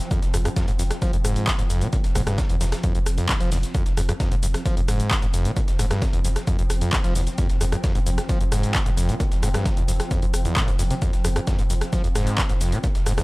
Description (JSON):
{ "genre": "driving peak-time techno", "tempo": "132 BPM", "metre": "4/4", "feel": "straight", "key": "F minor", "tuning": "A4 = 440 Hz", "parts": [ { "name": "swarming drone", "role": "drone", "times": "0.0-13.2 s", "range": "F3 to C4", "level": "-34 LUFS", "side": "equal", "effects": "built-in reverb, sidechain pumping" }, { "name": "dusty soul sampler-style drum kit", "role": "drums", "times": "0.0-13.2 s", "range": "hi-hat, snare drum", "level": "-39 LUFS", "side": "equal", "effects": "none" }, { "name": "techno drum kit", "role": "drums", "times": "0.0-13.2 s", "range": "handclaps, hi-hat, rim click, shaker", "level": "-28 LUFS", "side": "equal", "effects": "overdrive, sidechain pumping on hats, sidechain pumping on perc" }, { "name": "screaming distorted acid line", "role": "riff", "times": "0.1-13.2 s", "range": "E2 to F3", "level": "-26 LUFS", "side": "equal", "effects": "distortion, chorus, sidechain pumping" }, { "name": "electronic kick drum", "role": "drums", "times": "0.1-12.9 s", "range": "none", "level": "-23 LUFS", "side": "equal", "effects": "overdrive" }, { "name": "warm sub bass", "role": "bass", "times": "0.2-13.2 s", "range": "F1", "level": "-25 LUFS", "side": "equal", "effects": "overdrive, sidechain pumping, low-pass filter" } ], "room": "light reverb", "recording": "dry, gritty hardware recording", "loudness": "-20 LUFS", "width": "side -22 dB against mid", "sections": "0.0-13.2 A section", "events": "none", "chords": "0.0 F5" }